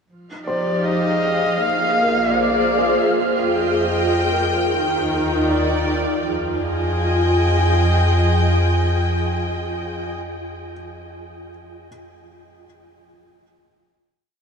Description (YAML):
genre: ambient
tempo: 78 BPM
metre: 4/4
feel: straight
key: F dorian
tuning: A4 = 440 Hz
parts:
  - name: warm studio string section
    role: sustained chords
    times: 0.1-10.1 s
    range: Eb3 to G5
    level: -20 LUFS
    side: equal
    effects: low-pass filter
  - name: deep rumbling drone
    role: bass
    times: 2.3-8.6 s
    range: Bb1 to F2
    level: -22 LUFS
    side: equal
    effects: built-in reverb
  - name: wind-like tuned noise texture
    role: texture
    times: 0.6-6.3 s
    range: F6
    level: -32 LUFS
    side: right 5 dB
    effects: built-in reverb, analog chorus
  - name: dark electric violin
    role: melody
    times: 0.5-2.8 s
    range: D5 to F5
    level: -24 LUFS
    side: equal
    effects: ping-pong delay
  - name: felt-muted upright piano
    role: arpeggios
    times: 0.5-11.9 s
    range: Ab4 to F5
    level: -29 LUFS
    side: equal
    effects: ping-pong delay
room: wet huge ambient reverb, RT60 7.9 s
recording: dreamy mix soaked in reverb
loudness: -17 LUFS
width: side -6 dB against mid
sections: 0.1-6.3 A section; 6.3-9.4 final chord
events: fade-in on synth drone 0.1-6.3; fade-out on felt piano 0.1-6.3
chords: 0.1 Fm7; 1.6 Bb7; 3.2 Fm7; 4.7 Ebmaj7; 6.3 Fm7